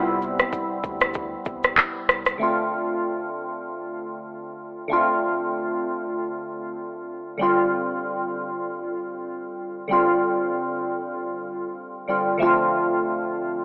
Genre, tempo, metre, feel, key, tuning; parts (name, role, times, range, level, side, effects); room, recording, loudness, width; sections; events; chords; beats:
afrobeats; 96 BPM; 4/4; swing 58% on 16ths; D dorian; A4 = 440 Hz
glassy digital keys; accompaniment; 0.0-13.6 s; C3 to F4; -26 LUFS; equal; chorus
warm sub bass; bass; 0.0-2.3 s; C2 to D2; -46 LUFS; equal
afro-pop drum kit; drums; 0.2-2.4 s; handclaps, kick drum, rim click, shaker; -24 LUFS; equal
moderate plate reverb, RT60 2.5 s; telephone sound; -25 LUFS; mono
0.0-2.4 A section; 2.4-12.4 B section; 12.4-13.6 A section
0.0 Cmaj7; 2.4 Dm7; 7.4 G7sus4; 12.4 Dm7
0.53 1.15 1.78 | 2.40 3.03 3.65 4.28 | 4.90 5.53 6.15 6.78 | 7.40 8.03 8.65 9.28 | 9.90 10.53 11.15 11.78 | 12.40 13.03